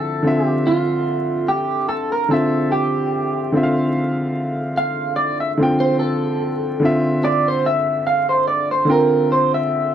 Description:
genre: R&B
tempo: 73 BPM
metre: 4/4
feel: swing 55% on 16ths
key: D minor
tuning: A4 = 440 Hz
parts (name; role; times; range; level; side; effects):
- electric guitar through a small old amp; melody; 0.0-9.9 s; F4 to F5; -19 LUFS; right 2 dB; wide subtle chorus, slapback echo
- warm upright piano; accompaniment; 0.0-9.9 s; D3 to G5; -19 LUFS; left 1 dB; none
room: light reverb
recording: dry, close 1970s-style studio recording, vinyl crackle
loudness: -16 LUFS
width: side -10 dB against mid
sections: 0.0-9.9 A section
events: clean electric guitar solo 0.0-9.9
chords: 0.0 Dm9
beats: | 0.25 1.07 1.89 2.71 | 3.54 4.36 5.18 6.00 | 6.82 7.65 8.47 9.29

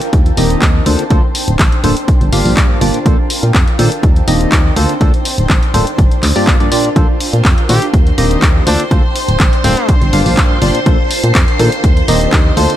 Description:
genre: piano house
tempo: 123 BPM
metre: 4/4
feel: straight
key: Bb major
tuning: A4 = 439 Hz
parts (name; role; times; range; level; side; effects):
- punchy analog drum machine; drums; 0.0-12.8 s; handclaps, hi-hat; -18 LUFS; equal; none
- granular cloud pad; texture; 0.0-12.8 s; D4 to A5; -21 LUFS; equal; built-in reverb, sidechain pumping
- solid FM bass; bass; 0.1-12.7 s; D1 to Bb2; -14 LUFS; equal; sidechain pumping
- electronic kick drum; drums; 0.1-12.4 s; none; -12 LUFS; equal; none
- percussive organ stab; riff; 0.4-12.7 s; G2 to F5; -17 LUFS; equal; analog chorus, sidechain pumping, tape echo
- string machine, violins; sustained chords; 7.0-12.8 s; C5 to C6; -21 LUFS; right 1 dB; ensemble chorus, sidechain pumping
- breathy trumpet; melody; 7.7-9.9 s; C4 to G4; -22 LUFS; equal; tape echo
room: little or no reverb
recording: none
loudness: -9 LUFS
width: side -12 dB against mid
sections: 0.0-12.8 A section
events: none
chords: 0.1 Eb6; 0.9 Bbmaj9/D; 2.1 Gm7; 3.1 Bbmaj9; 4.0 Eb6; 4.8 Bbmaj9/D; 6.0 Gm7; 7.0 Bbmaj9; 7.9 Eb6; 8.7 Bbmaj9/D; 9.9 Gm7; 10.9 Bbmaj9; 11.8 Eb6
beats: 0.13 0.62 | 1.11 1.59 2.08 2.57 | 3.06 3.55 4.03 4.52 | 5.01 5.50 5.99 6.47 | 6.96 7.45 7.94 8.42 | 8.91 9.40 9.89 10.38 | 10.86 11.35 11.84 12.33

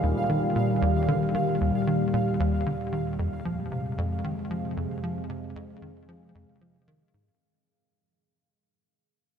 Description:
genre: ambient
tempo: 114 BPM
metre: 4/4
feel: straight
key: unclear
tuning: A4 = 440 Hz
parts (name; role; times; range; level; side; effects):
- evolving wavetable pad; sustained chords; 0.0-7.4 s; Eb2 to Ab3; -28 LUFS; left 1 dB; phaser, built-in reverb
- tight sequencer bass; riff; 0.0-7.3 s; Eb2 to F3; -29 LUFS; equal; wide subtle chorus, ping-pong delay
- pulsing gated texture; texture; 0.0-7.4 s; F5; -34 LUFS; right 3 dB; chorus, built-in reverb
room: wet huge ambient reverb, RT60 7.9 s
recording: dreamy mix soaked in reverb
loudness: -24 LUFS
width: side -7 dB against mid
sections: 0.0-7.4 A section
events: fade-out 1.8-7.4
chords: 0.0 Eb; 3.2 Fm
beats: 0.03 0.56 | 1.09 1.61 2.14 2.67 | 3.19 3.72 4.24 4.77 | 5.30 5.82 6.35 6.88

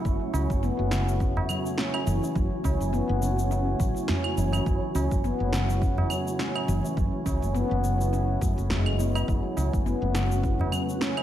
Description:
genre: organic downtempo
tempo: 104 BPM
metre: 4/4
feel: swing 57% on 16ths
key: F# minor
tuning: A4 = 440 Hz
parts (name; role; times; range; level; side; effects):
- granular cloud pad; sustained chords; 0.0-11.2 s; A3 to C#5; -33 LUFS; equal; built-in reverb, sidechain pumping
- handpan; arpeggios; 0.0-11.1 s; C#3 to C#4; -29 LUFS; left 1 dB; tape echo
- woody fretless electric bass; bass; 0.0-10.7 s; F#1 to F#2; -27 LUFS; equal; sidechain pumping
- electronic kick drum; drums; 0.0-10.6 s; none; -28 LUFS; equal; overdrive
- electronic shaker, snare drum and claves; drums; 0.1-11.2 s; none; -33 LUFS; equal; overdrive
- tabla; percussion; 0.2-11.2 s; none; -34 LUFS; right 1 dB; none
room: light reverb, digital ambience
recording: none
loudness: -24 LUFS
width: side -12 dB against mid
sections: 0.0-11.2 A section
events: none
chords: 0.0 F#m7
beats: | 0.05 0.63 1.20 1.78 | 2.36 2.93 3.51 4.09 | 4.67 5.24 5.82 6.40 | 6.97 7.55 8.13 8.70 | 9.28 9.86 10.43 11.01

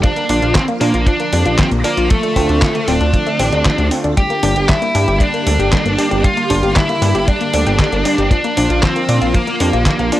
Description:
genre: italo disco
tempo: 116 BPM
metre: 4/4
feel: straight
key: G dorian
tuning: A4 = 443 Hz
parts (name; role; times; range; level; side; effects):
- high-gain lead guitar; melody; 0.0-10.2 s; A3 to G5; -18 LUFS; equal; distortion, vintage 12-bit sampler grit, analog delay
- phased string machine; sustained chords; 0.0-10.2 s; D3 to G4; -25 LUFS; equal; ensemble chorus, phaser
- analog pluck; arpeggios; 0.0-10.2 s; F3 to G4; -20 LUFS; left 2 dB; chorus, phaser, analog delay
- chorused synth bass; bass; 0.0-10.1 s; D1 to Bb2; -17 LUFS; equal; tube saturation
- detuned 8-bit digital drum machine; drums; 0.0-10.2 s; handclaps, hi-hat, snare drum; -20 LUFS; equal; overdrive
- kick drum; drums; 0.0-10.0 s; none; -15 LUFS; equal; none
- warm electric grand piano; stabs; 0.3-10.2 s; F3 to A4; -24 LUFS; right 3 dB; none
room: digital ambience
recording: dry, gritty hardware recording, cassette tape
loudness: -12 LUFS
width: side -14 dB against mid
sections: 0.0-10.2 A section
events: none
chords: 0.0 Bb; 2.1 Dm7; 4.2 Gm; 8.3 Bb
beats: | 0.03 0.55 1.07 1.59 | 2.10 2.62 3.14 3.65 | 4.17 4.69 5.21 5.72 | 6.24 6.76 7.28 7.79 | 8.31 8.83 9.35 9.86

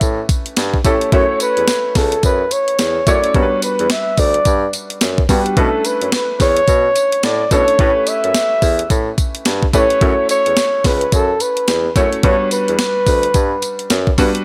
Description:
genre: R&B, new jack swing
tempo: 108 BPM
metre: 4/4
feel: swing 60% on 16ths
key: unclear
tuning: A4 = 440 Hz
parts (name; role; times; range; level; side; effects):
- trumpet with bucket mute; melody; 0.0-14.1 s; G4 to E5; -18 LUFS; equal; none
- clear concert grand piano; accompaniment; 0.0-14.4 s; G3 to C#5; -24 LUFS; equal; none
- warm bassoon; bass; 0.0-14.3 s; C#2 to B2; -22 LUFS; equal; none
- crisp 8-bit digital drum machine; drums; 0.0-14.4 s; hi-hat, kick drum, snare drum, tambourine; -19 LUFS; equal; overdrive
room: light reverb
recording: none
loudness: -15 LUFS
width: mono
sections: 0.0-14.4 A section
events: none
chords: 0.0 A9; 1.1 F#m7; 3.3 Gmaj7; 5.6 Bm11; 7.8 A9; 10.0 F#m7; 12.2 Gmaj7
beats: 0.01 0.57 | 1.12 1.68 2.23 2.79 | 3.35 3.90 4.46 5.01 | 5.57 6.12 6.68 7.24 | 7.79 8.35 8.90 9.46 | 10.01 10.57 11.12 11.68 | 12.23 12.79 13.35 13.90

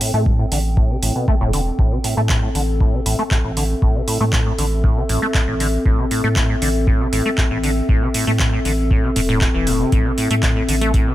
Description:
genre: acid house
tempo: 118 BPM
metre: 4/4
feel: straight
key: A minor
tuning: A4 = 440 Hz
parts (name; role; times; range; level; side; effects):
- liquid acid bass; riff; 0.0-11.1 s; A2 to A3; -22 LUFS; equal; tube saturation, wide subtle chorus, digital delay
- booming analog drum machine; drums; 0.0-11.0 s; handclaps, hi-hat; -24 LUFS; right 1 dB; overdrive
- warbly tape-like pad; texture; 0.0-11.1 s; C4 to G5; -23 LUFS; left 1 dB; chorus, built-in reverb, sidechain pumping
- saturated sub bass; bass; 0.1-11.0 s; E1 to A2; -21 LUFS; equal; tube saturation, sidechain pumping
- electronic kick drum; drums; 0.3-11.0 s; none; -19 LUFS; equal; overdrive
room: light reverb, digital ambience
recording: none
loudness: -15 LUFS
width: side -14 dB against mid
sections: 0.0-11.1 A section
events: filter sweep on acid bass 0.0-11.1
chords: 0.0 Am7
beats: 0.26 0.77 1.28 | 1.79 2.30 2.81 3.31 | 3.82 4.33 4.84 5.35 | 5.86 6.37 6.87 7.38 | 7.89 8.40 8.91 9.42 | 9.93 10.43 10.94

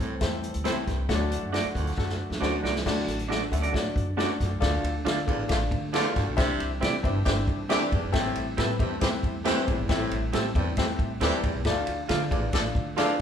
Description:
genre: uptempo 1960s-style soul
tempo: 136 BPM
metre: 4/4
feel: straight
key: unclear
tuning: A4 = 440 Hz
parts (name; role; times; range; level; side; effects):
- mellow horn section; second line; 0.0-2.6, 5.3-13.2 s; D3 to A4; -33 LUFS; right 1 dB; none
- clear concert grand piano; accompaniment; 0.0-13.2 s; A3 to E5; -31 LUFS; left 4 dB; none
- percussive tonewheel organ; sustained chords; 0.0-13.2 s; D3 to F4; -37 LUFS; right 2 dB; chorus vibrato, fast rotary speaker
- growling baritone saxophone; riff; 0.0-13.2 s; D2 to C3; -36 LUFS; right 4 dB; none
- upright bass; bass; 0.0-13.0 s; G1 to D3; -31 LUFS; equal; none
- vintage drum kit; drums; 0.0-13.1 s; crash cymbal, hi-hat, kick drum, ride cymbal, snare drum; -29 LUFS; equal; none
- electric guitar through a small old amp; stabs; 0.6-13.1 s; C4 to F5; -32 LUFS; right 4 dB; none
room: moderate large studio reverb, RT60 1.1 s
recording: band playing live in one room, lossy compression artefacts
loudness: -24 LUFS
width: side -8 dB against mid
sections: 0.0-2.9 A section; 2.9-4.6 B section; 4.6-13.2 C section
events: drum fill 2.0-2.9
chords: 0.0 C6; 1.1 D; 4.6 Dm; 6.4 Cadd9; 8.1 Am7; 11.7 Dm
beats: 0.21 0.65 | 1.09 1.53 1.98 2.42 | 2.86 3.30 3.74 4.18 | 4.62 5.06 5.50 5.94 | 6.38 6.82 7.26 7.70 | 8.14 8.58 9.02 9.46 | 9.89 10.33 10.77 11.21 | 11.65 12.09 12.53 12.97

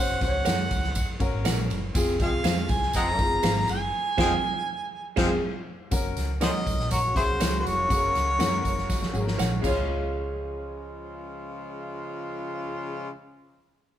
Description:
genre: uptempo 1960s-style soul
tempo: 121 BPM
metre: 4/4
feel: straight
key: Db major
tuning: A4 = 439 Hz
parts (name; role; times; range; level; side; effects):
- warm harmonica; melody; 0.0-9.4 s; Fb4 to Bb5; -27 LUFS; equal; none
- warm grand piano; accompaniment; 0.0-13.1 s; Ab3 to Db5; -32 LUFS; left 2 dB; none
- vintage muted fingered electric bass; bass; 0.0-13.1 s; F1 to Gb2; -31 LUFS; equal; none
- swinging big-band drum kit; drums; 0.2-9.8 s; crash cymbal, hi-hat, kick drum, ride cymbal, snare drum; -28 LUFS; equal; none
- tambourine; percussion; 0.2-10.1 s; none; -39 LUFS; right 4 dB; none
- clean electric guitar; stabs; 0.4-13.2 s; Ab4 to Gb5; -34 LUFS; right 6 dB; none
- mellow horn section; second line; 2.2-13.1 s; Db3 to Ab4; -34 LUFS; equal; none
room: moderate large studio reverb, RT60 1.4 s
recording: band playing live in one room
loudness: -23 LUFS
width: side -11 dB against mid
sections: 0.0-5.9 A section; 5.9-9.9 B section; 9.9-13.9 C section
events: band accent 3.9-5.9; drum fill 8.9-9.9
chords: 0.0 Gb; 2.0 Fm; 5.9 Gb; 9.6 Db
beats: 0.47 0.96 1.46 | 1.95 2.45 2.94 3.44 | 3.94 4.43 4.93 5.42 | 5.92 6.42 6.91 7.41 | 7.90 8.40 8.89 9.39 | 9.89 10.38 10.88 11.38 | 11.87 12.37 12.86

